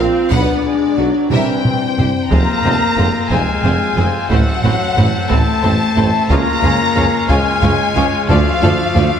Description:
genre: cinematic, epic orchestral film score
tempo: 60 BPM (dotted quarters)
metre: 6/8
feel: straight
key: unclear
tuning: A4 = 438 Hz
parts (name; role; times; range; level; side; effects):
- warm symphonic violin section; melody; 0.0-9.2 s; C5 to Bb5; -19 LUFS; left 4 dB; none
- clear symphonic violin section; second line; 0.0-9.0 s; E4 to F#5; -26 LUFS; left 2 dB; none
- rich symphonic viola section; accompaniment; 0.0-9.0 s; E3 to F4; -24 LUFS; equal; none
- dark French horn section; sustained chords; 0.0-9.2 s; F3 to F4; -19 LUFS; left 2 dB; none
- dark symphonic double bass section; bass; 0.0-9.0 s; F1 to D2; -23 LUFS; right 3 dB; none
- rich symphonic cello section; bass; 0.0-9.0 s; Db2 to C3; -22 LUFS; right 3 dB; none
- warm tuba; bass; 0.0-9.1 s; F1 to D2; -22 LUFS; right 3 dB; none
- taiko ensemble; drums; 0.3-9.2 s; none; -19 LUFS; equal; none
- pipe organ, trumpet; sustained chords; 2.3-9.2 s; Ab3 to F5; -22 LUFS; left 1 dB; none
room: wet scoring stage reverb, RT60 1.8 s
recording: none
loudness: -12 LUFS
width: side -8 dB against mid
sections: 0.0-2.3 A section; 2.3-9.2 B section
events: drum fill 1.3-2.3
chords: 0.3 Bm; 1.3 C7; 2.3 Fm; 4.3 Am; 6.3 Db; 8.3 Dm

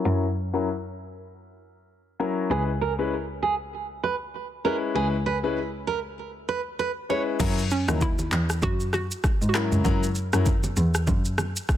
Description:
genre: afrobeats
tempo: 98 BPM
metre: 4/4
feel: swing 58% on 16ths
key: F# mixolydian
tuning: A4 = 439 Hz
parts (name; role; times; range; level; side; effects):
- clear concert grand piano; accompaniment; 0.0-10.5 s; F#3 to B4; -28 LUFS; left 5 dB; low-pass filter
- warm cello; bass; 0.1-11.5 s; C#2 to G#2; -26 LUFS; equal; none
- nylon-string guitar; riff; 2.5-7.2 s; G#4 to C#5; -28 LUFS; right 5 dB; low-pass filter, digital delay
- afro-pop drum kit; drums; 7.4-11.8 s; crash cymbal, handclaps, kick drum, rim click, shaker, toms; -25 LUFS; equal; soft clipping on snare
- congas and bongos; percussion; 7.4-11.8 s; none; -34 LUFS; right 3 dB; none
- hollow square pluck; melody; 7.7-11.8 s; C#4 to F#4; -30 LUFS; right 1 dB; chorus, digital delay
room: studio ambience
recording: dense, heavily limited modern master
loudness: -23 LUFS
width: side -11 dB against mid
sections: 0.0-7.4 A section; 7.4-11.8 B section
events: filter sweep 0.0-7.4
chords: 0.0 F#7; 2.5 C#m7; 7.4 F#7

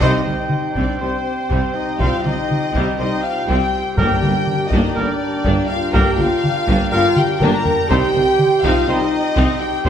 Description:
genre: cinematic, epic orchestral film score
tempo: 122 BPM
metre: 4/4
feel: straight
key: C minor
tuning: A4 = 436 Hz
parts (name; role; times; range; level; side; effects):
- rich symphonic violin section; melody; 0.0-9.9 s; C5 to Bb5; -28 LUFS; left 5 dB; none
- warm symphonic violin section; second line; 0.0-9.9 s; C5 to Bb5; -25 LUFS; left 5 dB; none
- rich symphonic viola section; accompaniment; 0.0-9.9 s; Eb3 to Eb4; -25 LUFS; equal; none
- dark French horn section; sustained chords; 0.0-9.8 s; C4 to Bb4; -21 LUFS; equal; none
- pipe organ, flutes; sustained chords; 0.0-9.9 s; C4 to G5; -25 LUFS; right 1 dB; none
- warm trombone section; sustained chords; 0.0-9.9 s; C3 to G3; -32 LUFS; right 2 dB; none
- mellow trumpet; stabs; 0.0-9.9 s; Bb4 to C5; -26 LUFS; right 2 dB; none
- rich symphonic cello section; bass; 0.0-9.9 s; G2 to C3; -26 LUFS; right 2 dB; none
- rich symphonic double bass section; bass; 0.0-9.9 s; G1 to C2; -27 LUFS; right 2 dB; none
- warm tuba; bass; 0.0-9.5 s; G1 to C2; -27 LUFS; right 3 dB; none
- taiko ensemble; drums; 0.0-9.9 s; none; -22 LUFS; equal; none
- timpani; percussion; 4.0-4.7 s; G2; -26 LUFS; left 2 dB; none
room: wet scoring stage reverb, RT60 1.8 s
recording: none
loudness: -15 LUFS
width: side -9 dB against mid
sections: 0.0-9.9 A section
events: band accent 0.0-0.5; drum fill 7.2-7.9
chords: 0.0 Cm; 4.0 Gm; 7.9 Cm

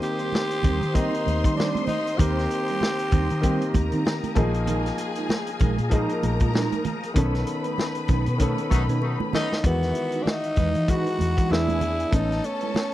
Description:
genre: lush 1970s-style soul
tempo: 97 BPM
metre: 4/4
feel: swing 58% on 16ths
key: Eb major, E major from 9.6 s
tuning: A4 = 440 Hz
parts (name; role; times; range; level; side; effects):
- growling tenor saxophone; melody; 0.0-4.0, 9.4-12.9 s; B3 to G4; -27 LUFS; equal; slapback echo
- dark studio string section; second line; 0.0-12.9 s; F#4 to C6; -34 LUFS; left 4 dB; none
- warm grand piano; accompaniment; 0.0-12.9 s; Eb3 to Bb4; -29 LUFS; left 2 dB; none
- tonewheel organ; sustained chords; 0.0-9.6 s; Ab4 to Eb6; -38 LUFS; equal; chorus vibrato, slow rotary speaker
- mellow electric guitar; riff; 0.0-12.7 s; G3 to C#5; -32 LUFS; right 7 dB; phaser
- vintage drum kit; drums; 0.0-12.9 s; hi-hat, kick drum, snare drum; -25 LUFS; equal; none
- congas; percussion; 0.3-12.9 s; none; -32 LUFS; right 6 dB; none
- vintage muted fingered electric bass; bass; 0.6-12.4 s; A1 to E3; -26 LUFS; equal; none
- warm horn section; stabs; 8.7-9.5 s; F#3 to D#4; -31 LUFS; left 3 dB; none
room: small room ambience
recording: dry, close 1970s-style studio recording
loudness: -21 LUFS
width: side -14 dB against mid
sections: 0.0-9.6 A section; 9.6-12.9 B section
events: band accent 7.2-9.6; drum fill 9.0-9.6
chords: 0.0 Eb6; 4.4 Bb7sus4; 7.2 B9; 9.6 Emaj9; 11.5 E7; 12.1 Amaj9

